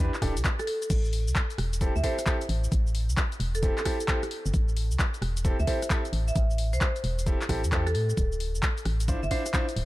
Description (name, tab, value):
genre	UK garage, two-step garage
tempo	132 BPM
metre	4/4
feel	swing 65% on 16ths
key	A minor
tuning	A4 = 441 Hz
part	clear baby grand piano	stabs	0.0-9.6 s	C4 to C5	-34 LUFS	equal	low-pass filter
part	organ-like FM bass	bass	0.0-9.8 s	D1 to A2	-27 LUFS	equal	none
part	punchy analog drum machine	drums	0.1-9.8 s	cabasa, crash cymbal, handclaps, hi-hat, rim click	-33 LUFS	left 1 dB	none
part	electronic kick drum	drums	0.2-9.7 s	none	-27 LUFS	equal	overdrive
part	marimba with hard mallets	melody	0.6-9.5 s	A4 to E5	-34 LUFS	right 1 dB	none
room	little or no reverb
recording	dark, warm production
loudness	-25 LUFS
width	side -17 dB against mid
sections	0.0-9.8 A section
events	none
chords	0.0 Em7; 0.9 Am7; 8.2 Dm9